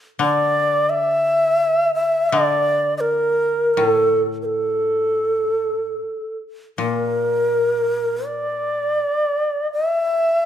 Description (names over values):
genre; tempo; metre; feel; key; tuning
japanese traditional, Japanese chamber music; free time; none; none; unclear; A4 = 440 Hz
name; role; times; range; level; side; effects
breathy bright long shakuhachi; melody; 0.2-10.5 s; A4 to E5; -18 LUFS; equal; none
koto; accompaniment; 0.2-9.0 s; A2 to D3; -26 LUFS; left 4 dB; none
room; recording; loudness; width
moderate recital hall reverb, RT60 1.4 s; minimal, uncompressed stereo recording; -17 LUFS; side -10 dB against mid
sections
0.0-10.5 A section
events
none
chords
none